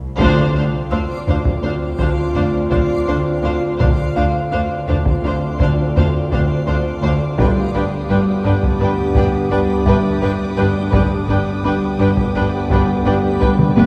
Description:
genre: cinematic, suspense film score.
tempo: 84 BPM.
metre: 5/4.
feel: straight.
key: D dorian.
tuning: A4 = 439 Hz.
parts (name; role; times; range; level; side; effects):
Celtic harp; riff; 0.0-13.9 s; G2 to D4; -25 LUFS; equal; none.
swarming drone; drone; 0.0-13.9 s; C2 to D2; -29 LUFS; equal; none.
clear chamber violin section; melody; 0.2-13.9 s; F5 to G5; -36 LUFS; equal; none.
rich chamber violin section; second line; 0.2-13.9 s; B4 to C5; -28 LUFS; equal; none.
rich symphonic viola section; accompaniment; 0.2-13.9 s; D4; -29 LUFS; equal; none.
backwards swelling texture; sustained chords; 0.8-13.9 s; D4 to C6; -30 LUFS; equal; built-in reverb.
dark French horn section; sustained chords; 0.2-13.9 s; B3 to G4; -26 LUFS; equal; none.
clear chamber cello section; bass; 0.2-13.9 s; D2 to G2; -26 LUFS; equal; none.
clear chamber double bass section; bass; 0.2-13.9 s; G1 to D2; -26 LUFS; equal; none.
taiko ensemble; drums; 0.2-13.9 s; none; -21 LUFS; equal; none.
music box; texture; 0.9-12.0 s; E5 to E6; -29 LUFS; equal; none.
rich chamber violin section; texture; 7.4-13.9 s; D6 to Eb6; -37 LUFS; equal; none.
room: wet scoring stage reverb, RT60 1.9 s.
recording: heard from further back in the room.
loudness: -17 LUFS.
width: mono.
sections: 0.2-13.9 A section.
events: break 0.0; band accent 0.2-0.9; drum fill 13.6.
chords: 0.2 Dm7; 7.4 G.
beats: | 0.19 0.91 1.63 2.35 3.08 | 3.80 4.52 5.24 5.96 6.67 | 7.38 8.09 8.80 9.51 10.22 | 10.93 11.64 12.35 13.06 13.77.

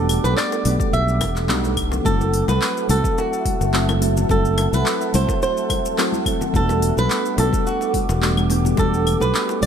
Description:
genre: sunset chillout.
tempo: 107 BPM.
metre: 4/4.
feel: swing 53% on 16ths.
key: E minor.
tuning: A4 = 444 Hz.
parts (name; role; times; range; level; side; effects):
flamenco guitar; melody; 0.0-9.7 s; F#4 to E5; -24 LUFS; right 2 dB; ping-pong delay.
soft electric-piano-like synth keys; accompaniment; 0.0-9.7 s; F#3 to A4; -24 LUFS; left 1 dB; chorus, auto-pan, ping-pong delay.
ethereal airy pad; sustained chords; 0.0-9.7 s; A4 to D6; -27 LUFS; right 3 dB; ensemble chorus, built-in reverb.
fingered electric bass; bass; 0.0-9.7 s; E1 to C2; -20 LUFS; equal; none.
deep house drum kit; drums; 0.1-9.7 s; claves, handclaps, hi-hat, shaker; -26 LUFS; left 1 dB; studio reverb.
congas and bongos; percussion; 0.2-9.7 s; none; -30 LUFS; left 6 dB; none.
electronic kick drum; drums; 0.8-8.9 s; none; -24 LUFS; equal; studio reverb.
room: light reverb.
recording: none.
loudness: -17 LUFS.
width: side -8 dB against mid.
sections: 0.0-9.7 A section.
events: none.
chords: 0.0 Em11; 2.1 F#m7b5; 6.5 Em11.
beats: 0.37 0.93 1.49 | 2.05 2.62 3.17 3.74 | 4.30 4.86 5.42 5.98 | 6.54 7.10 7.66 8.22 | 8.78 9.34.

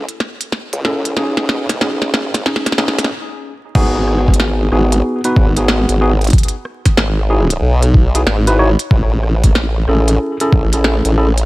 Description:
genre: glitch hop.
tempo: 93 BPM.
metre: 4/4.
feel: swing 64% on 16ths.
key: unclear.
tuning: A4 = 443 Hz.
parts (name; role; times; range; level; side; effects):
formant-sweep wobble bass; bass; 0.0-11.5 s; G#1 to C#2; -15 LUFS; equal; chorus, tube saturation, high-pass filter.
glitchy drum kit; drums; 0.1-11.5 s; crash cymbal, hi-hat, rim click, snare drum; -18 LUFS; equal; none.
tine electric piano; stabs; 0.9-11.3 s; B3 to C#5; -18 LUFS; equal; overdrive, vintage 12-bit sampler grit, sidechain pumping, ping-pong delay.
electronic kick drum; drums; 3.8-10.7 s; none; -11 LUFS; equal; overdrive.
room: little or no reverb.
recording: vinyl crackle.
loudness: -12 LUFS.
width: side -19 dB against mid.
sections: 0.0-3.8 A section; 3.8-11.5 B section.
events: build-up 0.0-3.8; drum fill 0.0-3.1; stop 3.1-3.8; drop 3.8-11.5.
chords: 0.0 Amaj7; 1.2 B; 3.8 G#m7; 6.3 Emaj9; 8.9 Amaj7.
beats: 0.53 | 1.17 1.82 2.46 3.11 | 3.75 4.40 5.04 5.69 | 6.33 6.98 7.62 8.27 | 8.91 9.56 10.21 10.85.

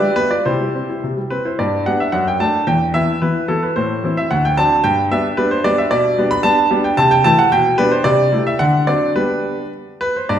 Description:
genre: classical-period piano sonatina.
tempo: 103-114 BPM.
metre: 2/4.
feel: rubato.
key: G major.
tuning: A4 = 441 Hz.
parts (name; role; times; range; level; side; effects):
clear grand piano; solo; 0.0-10.4 s; D2 to B5; -14 LUFS; equal; none.
room: wet recital hall reverb, RT60 1.8 s.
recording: heard from further back in the room.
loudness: -14 LUFS.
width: side -9 dB against mid.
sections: 0.0-1.6 A section; 1.6-10.3 B section.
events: none.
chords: 0.4 C; 1.6 G; 2.1 D/F#; 2.7 E5; 3.8 Am; 4.3 D7; 4.8 G; 5.9 G/B; 7.0 Am/C; 7.5 G/B; 8.0 Am7/C; 8.6 D7; 9.2 G.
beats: | 0.45 1.02 | 1.59 2.13 | 2.68 3.22 | 3.76 4.30 | 4.84 5.37 | 5.90 6.43 | 6.97 7.51 | 8.05 8.60 | 9.16 9.73 | 10.30.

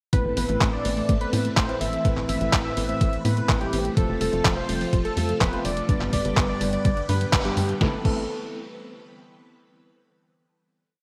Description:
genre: italo disco.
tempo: 125 BPM.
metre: 4/4.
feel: straight.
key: A minor.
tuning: A4 = 439 Hz.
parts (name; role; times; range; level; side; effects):
unison lead; melody; 0.1-8.2 s; G4 to E5; -31 LUFS; equal; cassette tape, digital delay.
phased string machine; sustained chords; 0.1-8.0 s; C3 to B4; -36 LUFS; equal; ensemble chorus, phaser, vintage 12-bit sampler grit.
warbly dusty pluck; arpeggios; 0.1-8.3 s; F3 to B3; -36 LUFS; equal; none.
tine electric piano; stabs; 0.1-8.2 s; G2 to C5; -33 LUFS; equal; medium tremolo.
tight sequencer bass; bass; 0.1-8.3 s; F1 to A2; -31 LUFS; equal; none.
detuned 8-bit digital drum machine; drums; 0.1-8.1 s; crash cymbal, handclaps, hi-hat, snare drum; -30 LUFS; equal; none.
electronic kick drum; drums; 0.1-8.1 s; none; -26 LUFS; equal; none.
room: moderate lush hall reverb, RT60 1.8 s.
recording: bright 1980s-style digital production.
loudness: -23 LUFS.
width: mono.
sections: 0.1-7.8 chorus; 7.8-9.7 final chord.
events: band accent 7.3.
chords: 0.1 Amadd9; 4.0 F; 5.9 G; 7.8 Amadd9.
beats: | 0.13 0.61 1.09 1.57 | 2.05 2.53 3.01 3.49 | 3.97 4.45 4.93 5.41 | 5.89 6.37 6.85 7.33 | 7.81.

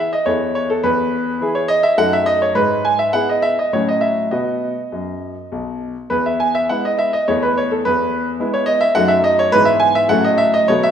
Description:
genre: classical-period piano sonatina.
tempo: 104 BPM.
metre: 3/4.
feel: rubato.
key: E major.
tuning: A4 = 440 Hz.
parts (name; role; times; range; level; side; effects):
clear concert grand piano; solo; 0.0-10.9 s; B1 to G#5; -15 LUFS; equal; none.
room: wet recital hall reverb, RT60 1.4 s.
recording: recorded in a church or concert hall.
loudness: -14 LUFS.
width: side -8 dB against mid.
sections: 0.0-10.9 A section.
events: none.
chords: 0.3 A/E; 0.8 E; 2.0 D#dim/F#; 2.6 E/G#; 3.7 F#m/A; 4.3 B; 6.1 E; 7.3 A5/E; 7.8 E; 9.0 D#dim/F#; 9.5 E/G#; 10.1 F#m/A.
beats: 0.27 | 0.84 1.41 1.98 | 2.55 3.13 3.71 | 4.30 4.90 5.50 | 6.10 6.69 7.26 | 7.84 8.40 8.97 | 9.54 10.11 10.71.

